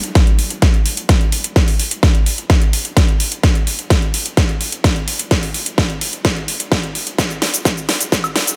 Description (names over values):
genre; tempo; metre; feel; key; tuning
EDM; 128 BPM; 4/4; straight; none; none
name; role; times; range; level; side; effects
big-room dance drum kit; drums; 0.0-8.6 s; hi-hat, shaker, snare drum, woodblock; -21 LUFS; equal; high-pass filter on hats, high-pass filter on snare, high-pass filter on perc, high-pass filter on room
electronic kick drum; drums; 0.2-8.2 s; none; -16 LUFS; equal; none
room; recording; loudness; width
light reverb; high-pass filter; -16 LUFS; mono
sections
0.0-8.6 A section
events
build-up 0.0-8.6; drum fill 0.0-8.6; filter sweep 0.0-8.6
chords
none